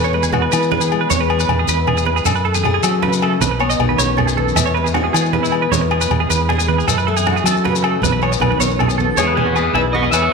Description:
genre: highlife guitar band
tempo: 104 BPM (dotted quarters)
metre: 12/8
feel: straight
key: E major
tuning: A4 = 435 Hz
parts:
  - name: picked steel-string acoustic guitar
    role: accompaniment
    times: 0.0-10.3 s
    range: E2 to G#4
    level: -22 LUFS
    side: left 11 dB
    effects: none
  - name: semi-hollow electric guitar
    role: arpeggios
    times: 0.0-10.3 s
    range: E4 to E5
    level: -19 LUFS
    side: right 9 dB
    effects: tremolo, tape echo
  - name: fingered electric bass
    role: bass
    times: 0.0-10.3 s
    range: B1 to F#3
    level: -20 LUFS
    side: equal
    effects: none
  - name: maracas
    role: percussion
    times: 0.0-10.2 s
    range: none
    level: -24 LUFS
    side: left 15 dB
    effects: none
  - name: congas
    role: percussion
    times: 0.2-10.1 s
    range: none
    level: -23 LUFS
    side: right 8 dB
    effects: none
  - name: agogo bells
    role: percussion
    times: 0.3-10.3 s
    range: none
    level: -24 LUFS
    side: left 13 dB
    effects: none
  - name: electric guitar at the edge of break-up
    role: melody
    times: 9.2-10.3 s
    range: G#4 to E5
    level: -17 LUFS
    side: left 1 dB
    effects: phaser
room: moderate echo chamber reverb, RT60 1.5 s, small room ambience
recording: 1960s-style stereo with parts hard left and right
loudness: -14 LUFS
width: side -4 dB against mid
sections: 0.0-9.2 A section; 9.2-10.3 B section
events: none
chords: 0.0 E; 2.3 F#madd9; 3.4 Badd9; 4.6 E; 6.9 F#madd9; 8.0 Badd9; 9.2 E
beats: 0.52 1.10 1.68 | 2.26 2.84 3.41 3.99 | 4.57 5.14 5.72 6.30 | 6.87 7.45 8.02 8.60 | 9.17 9.75 10.32

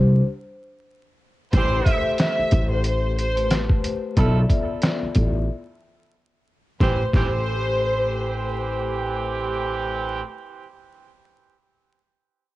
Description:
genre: hip hop, boom-bap hip-hop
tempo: 91 BPM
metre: 4/4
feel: swing 59% on 16ths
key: A minor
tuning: A4 = 438 Hz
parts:
  - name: vibraphone with soft mallets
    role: accompaniment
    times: 0.0-10.2 s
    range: A3 to E5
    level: -30 LUFS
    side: left 6 dB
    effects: cassette tape, high-pass filter, low-pass filter
  - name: upright bass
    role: bass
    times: 0.0-10.2 s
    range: A1 to C2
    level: -23 LUFS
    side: equal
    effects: none
  - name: warm studio violin section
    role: melody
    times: 1.5-8.7 s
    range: C5 to E5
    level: -26 LUFS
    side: equal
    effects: high-pass filter, low-pass filter, analog delay
  - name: trip hop sampler-style drum kit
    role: drums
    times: 1.5-7.3 s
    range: hi-hat, kick drum, rim click, snare drum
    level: -21 LUFS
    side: equal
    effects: cassette tape
  - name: clear saxophone section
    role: stabs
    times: 1.6-10.2 s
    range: E3 to A4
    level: -29 LUFS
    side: right 5 dB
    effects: high-pass filter, low-pass filter, cassette tape, analog delay
room: small room ambience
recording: home recording on cassette, vinyl crackle, nothing above 10.9 kHz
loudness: -20 LUFS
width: side -17 dB against mid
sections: 0.0-1.5 A section; 1.5-6.8 B section; 6.8-9.4 C section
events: break 0.2-1.5, 5.5-6.8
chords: 0.0 D7sus4; 1.5 Am9; 4.2 Dm69; 6.8 Am7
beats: 0.21 0.87 | 1.53 2.19 2.85 3.51 | 4.17 4.83 5.49 6.15 | 6.80 7.46 8.12 8.78

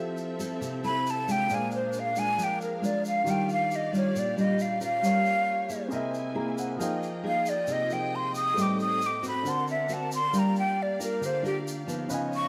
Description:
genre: bossa nova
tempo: 136 BPM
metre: 4/4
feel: straight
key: unclear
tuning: A4 = 438 Hz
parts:
  - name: nylon-string guitar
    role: accompaniment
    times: 0.0-12.5 s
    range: A2 to Bb4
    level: -33 LUFS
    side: equal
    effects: none
  - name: warm grand piano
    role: accompaniment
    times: 0.0-12.5 s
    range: Eb3 to Bb5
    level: -39 LUFS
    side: equal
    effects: none
  - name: rich studio string section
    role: sustained chords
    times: 0.0-12.5 s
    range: Bb3 to G#5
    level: -42 LUFS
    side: equal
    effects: none
  - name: egg shaker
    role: percussion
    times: 0.2-12.5 s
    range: none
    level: -47 LUFS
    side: equal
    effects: none
  - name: breathy hollow jazz flute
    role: melody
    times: 0.9-12.5 s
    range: G4 to Eb6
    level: -30 LUFS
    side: equal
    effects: none
room: moderate large studio reverb, RT60 1.3 s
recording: close, detailed microphones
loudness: -28 LUFS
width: mono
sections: 0.0-12.5 A section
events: flute solo 0.0-12.5; grand piano fill 6.1-6.8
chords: 0.0 Fmaj7; 1.5 Bb7; 3.3 Ebmaj9; 5.0 Gm7b5; 5.9 C7alt; 6.8 Fm11; 8.6 Am7b5; 9.5 D7b13; 10.3 Gm7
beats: 0.17 0.61 1.05 | 1.49 1.93 2.38 2.82 | 3.26 3.70 4.14 4.59 | 5.03 5.47 5.91 6.36 | 6.80 7.24 7.68 8.12 | 8.57 9.01 9.45 9.89 | 10.34 10.78 11.22 11.67 | 12.11

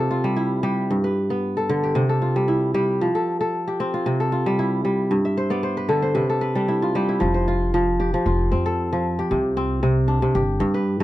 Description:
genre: west african traditional, West African string and xylophone music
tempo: 114 BPM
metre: 4/4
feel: straight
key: F lydian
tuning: A4 = 440 Hz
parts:
  - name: kora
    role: arpeggios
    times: 0.0-11.0 s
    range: G2 to E5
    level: -20 LUFS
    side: equal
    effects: none
  - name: upright bass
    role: bass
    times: 7.2-11.0 s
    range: F1 to G2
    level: -25 LUFS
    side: equal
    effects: none
room: light reverb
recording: dry, close 1970s-style studio recording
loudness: -19 LUFS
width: side -15 dB against mid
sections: 0.0-7.2 A section; 7.2-11.0 B section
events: kora fill 5.2-7.2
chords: 0.0 C; 0.9 G; 2.0 C; 3.0 F; 4.1 C; 5.1 G; 6.2 C5; 7.2 F; 9.3 C5; 10.3 G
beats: 0.38 | 0.90 1.43 1.96 2.48 | 3.01 3.53 4.06 4.58 | 5.11 5.63 6.16 6.68 | 7.21 7.73 8.26 8.78 | 9.30 9.82 10.35 10.87

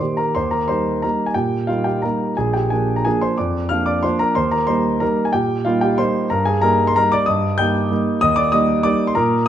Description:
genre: classical, piano waltz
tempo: 160-200 BPM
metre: 3/4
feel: rubato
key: Eb major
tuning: A4 = 440 Hz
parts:
  - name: warm concert grand piano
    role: solo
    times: 0.0-9.5 s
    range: Bb1 to G6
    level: -16 LUFS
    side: equal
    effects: none
room: moderate recital hall reverb, RT60 1.6 s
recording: close, detailed microphones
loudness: -16 LUFS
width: side -10 dB against mid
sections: 0.4-9.5 A section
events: none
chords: 0.4 Eb; 2.4 Bb7; 4.4 Eb; 6.3 Eb/G; 8.2 Eb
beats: | 0.36 0.70 1.04 | 1.36 1.69 2.04 | 2.38 2.71 3.05 | 3.38 3.71 4.04 | 4.36 4.68 5.01 | 5.34 5.66 5.99 | 6.31 6.63 6.96 | 7.28 7.59 7.91 | 8.22 8.53 8.86 | 9.17

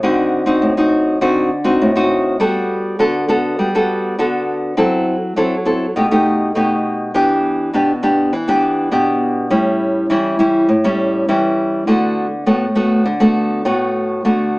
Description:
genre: samba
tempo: 101 BPM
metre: 4/4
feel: straight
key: D major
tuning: A4 = 440 Hz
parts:
  - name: nylon-string guitar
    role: solo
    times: 0.0-14.6 s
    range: A2 to A4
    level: -14 LUFS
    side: equal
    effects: none
room: moderate studio reverb, RT60 0.8 s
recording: band playing live in one room, small speaker sound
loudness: -14 LUFS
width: side -22 dB against mid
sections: 0.0-14.6 A section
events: none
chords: 0.0 D7b9; 2.4 Gmaj9; 4.8 F#m7b5; 6.0 Baug7; 7.1 Em7; 9.5 A7; 11.9 D6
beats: | 0.03 0.62 1.22 1.81 | 2.40 2.99 3.58 4.18 | 4.77 5.36 5.96 6.55 | 7.14 7.73 8.32 8.92 | 9.51 10.10 10.69 11.29 | 11.88 12.47 13.06 13.66 | 14.25

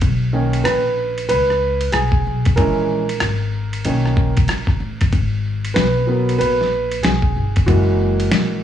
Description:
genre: hip hop, jazz-hop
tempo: 94 BPM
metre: 4/4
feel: swing 63% on 16ths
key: unclear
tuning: A4 = 440 Hz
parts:
  - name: upright bass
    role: bass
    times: 0.0-8.6 s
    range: F#1 to C#2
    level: -20 LUFS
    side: left 1 dB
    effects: none
  - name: dusty soul sampler-style drum kit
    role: drums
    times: 0.0-8.5 s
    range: hi-hat, kick drum, ride cymbal, rim click, snare drum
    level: -20 LUFS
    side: equal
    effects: overdrive
  - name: warm grand piano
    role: accompaniment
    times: 0.3-8.6 s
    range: D#3 to B4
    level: -19 LUFS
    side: right 2 dB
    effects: none
room: light reverb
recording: small room ambience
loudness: -15 LUFS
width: side -10 dB against mid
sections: 0.0-8.6 A section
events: grand piano solo 0.0-8.6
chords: 0.0 Bmaj7; 2.6 A#m7b5; 3.8 Bmaj7; 5.1 G#m9; 7.7 F#7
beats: | 0.02 0.66 1.30 1.93 | 2.57 3.21 3.85 4.49 | 5.13 5.76 6.40 7.04 | 7.68 8.32

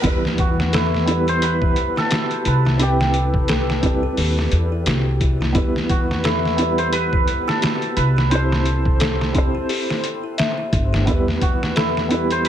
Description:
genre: trip hop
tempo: 87 BPM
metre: 4/4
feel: swing 58% on 16ths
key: E minor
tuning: A4 = 440 Hz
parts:
  - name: felt-muted upright piano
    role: accompaniment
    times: 0.0-12.5 s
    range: G3 to C5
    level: -24 LUFS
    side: equal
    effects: tremolo, tape echo
  - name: music box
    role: arpeggios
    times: 0.0-12.5 s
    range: E4 to E5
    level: -29 LUFS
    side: left 6 dB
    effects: ping-pong delay
  - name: upright bass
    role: bass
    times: 0.0-12.5 s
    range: G1 to E2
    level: -21 LUFS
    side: equal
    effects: none
  - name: trip hop sampler-style drum kit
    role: drums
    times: 0.0-12.5 s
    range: hi-hat, kick drum, snare drum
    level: -21 LUFS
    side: equal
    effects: overdrive
  - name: cimbalom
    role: melody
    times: 0.4-12.5 s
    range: E4 to C5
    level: -24 LUFS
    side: right 2 dB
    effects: tape echo
room: small room ambience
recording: none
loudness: -17 LUFS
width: side -10 dB against mid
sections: 0.0-12.5 A section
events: none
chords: 0.0 Em; 2.8 Cmaj7; 5.6 Em; 8.3 C; 11.1 Em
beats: | 0.04 0.73 1.42 2.11 | 2.79 3.48 4.17 4.86 | 5.55 6.24 6.93 7.62 | 8.31 9.00 9.69 10.38 | 11.07 11.76 12.45

